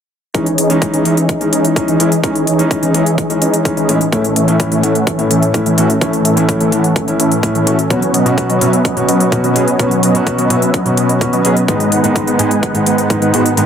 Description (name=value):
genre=EDM, festival progressive house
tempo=127 BPM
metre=4/4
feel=straight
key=C# minor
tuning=A4 = 440 Hz
part: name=felt-muted upright piano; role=accompaniment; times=0.3-13.7 s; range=G#2 to G#4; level=-16 LUFS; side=equal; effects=sidechain pumping, tape echo
part: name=lush unison pad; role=sustained chords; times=0.3-13.7 s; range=G#2 to D#4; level=-21 LUFS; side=equal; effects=chorus, sidechain pumping
part: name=supersaw chords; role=riff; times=0.3-13.7 s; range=E3 to G#5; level=-14 LUFS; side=equal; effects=sidechain pumping, low-pass filter, tape echo
part: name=electronic hi-hat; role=drums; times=0.3-13.7 s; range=none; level=-20 LUFS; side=left 2 dB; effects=overdrive
part: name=electronic kick drum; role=drums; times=0.3-13.2 s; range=none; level=-20 LUFS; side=equal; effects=overdrive, high-pass filter on kick
room=light reverb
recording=dense, heavily limited modern master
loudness=-11 LUFS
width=side -8 dB against mid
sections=0.3-13.7 A section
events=filter sweep on analog synth pad 0.3-13.7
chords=0.3 C#madd9; 4.1 A; 7.9 Bsus2; 11.7 G#m